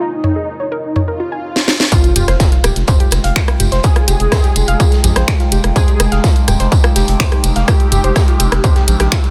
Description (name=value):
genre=melodic techno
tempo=125 BPM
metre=4/4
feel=straight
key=F minor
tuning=A4 = 440 Hz
part: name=fat analog lead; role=melody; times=0.0-9.0 s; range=Eb4 to Ab4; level=-25 LUFS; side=equal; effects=ensemble chorus, sidechain pumping, tape echo
part: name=dark analog pad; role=sustained chords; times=0.0-9.3 s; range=Ab3 to G5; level=-27 LUFS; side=equal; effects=chorus, sidechain pumping
part: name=soft round pluck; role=arpeggios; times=0.0-9.2 s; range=F4 to F6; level=-25 LUFS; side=equal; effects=chorus, sidechain pumping, tape echo
part: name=overtone-sweeping drone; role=drone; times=0.0-9.3 s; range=F2 to C3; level=-32 LUFS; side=equal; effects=chorus, built-in reverb, sidechain pumping
part: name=techno drum kit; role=drums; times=0.2-9.3 s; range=finger snaps, hi-hat, rim click, snare drum, toms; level=-19 LUFS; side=equal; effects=overdrive, sidechain pumping on toms, sidechain pumping on hats
part: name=swell and impact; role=sound effects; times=1.2-3.8 s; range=none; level=-27 LUFS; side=equal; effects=none
part: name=electronic kick drum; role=drums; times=1.9-9.2 s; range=none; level=-14 LUFS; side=equal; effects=distortion, overdrive
part: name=raw garage drum kit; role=drums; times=1.9-9.3 s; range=hi-hat, snare drum, tambourine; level=-30 LUFS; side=equal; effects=high-pass filter on hats, high-pass filter on snare, high-pass filter on perc, high-pass filter on room
part: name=round analog bass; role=bass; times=2.2-9.1 s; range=Eb1 to Bb1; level=-17 LUFS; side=equal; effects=sidechain pumping
room=digital ambience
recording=none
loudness=-13 LUFS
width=mono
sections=0.0-1.9 A section; 1.9-9.3 B section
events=filter sweep on drum 0.0-1.9; swell 1.2-1.9; drum fill 1.6-1.9; drop 1.9-9.3; impact 1.9-3.8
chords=0.0 Bbm7; 1.9 Fmadd9